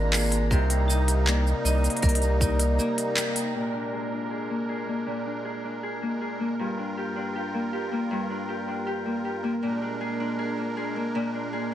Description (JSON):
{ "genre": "folktronica", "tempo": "79 BPM", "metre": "4/4", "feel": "straight", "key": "Bb mixolydian", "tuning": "A4 = 440 Hz", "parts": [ { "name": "vibraphone with hard mallets", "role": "second line", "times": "0.0-3.6 s", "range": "Bb3 to Bb5", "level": "-32 LUFS", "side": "left 2 dB", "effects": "tape echo" }, { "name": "musette accordion", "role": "sustained chords", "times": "0.0-11.7 s", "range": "G2 to Bb4", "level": "-33 LUFS", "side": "right 2 dB", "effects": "vintage 12-bit sampler grit, low-pass filter" }, { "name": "Celtic harp", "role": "arpeggios", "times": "0.0-11.7 s", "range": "G2 to Ab4", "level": "-29 LUFS", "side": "left 1 dB", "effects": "low-pass filter, tape echo" }, { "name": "round analog bass", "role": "bass", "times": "0.0-2.8 s", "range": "Ab1 to C2", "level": "-23 LUFS", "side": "equal", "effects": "none" }, { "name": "flickering grainy texture", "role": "texture", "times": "0.0-3.6 s", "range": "Bb5", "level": "-39 LUFS", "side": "right 4 dB", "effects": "built-in reverb" }, { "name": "organic electronic drum kit", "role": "drums", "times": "0.1-11.7 s", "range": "handclaps, hi-hat, shaker", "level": "-29 LUFS", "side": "right 1 dB", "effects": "low-pass filter on perc, low-pass filter on hats, low-pass filter on snare, low-pass filter on room" }, { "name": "electronic kick drum", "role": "drums", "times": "0.5-2.6 s", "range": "none", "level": "-24 LUFS", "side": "equal", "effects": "none" } ], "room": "light reverb", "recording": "none", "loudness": "-24 LUFS", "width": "side -12 dB against mid", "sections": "0.0-3.5 A section; 3.5-11.7 B section", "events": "break 2.8-3.5; band accent 3.2-3.5; filter sweep on harp 3.5-11.7", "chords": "0.0 Bb7; 0.5 Cm7; 3.5 Bb7; 6.6 Gm7; 9.6 Bb7" }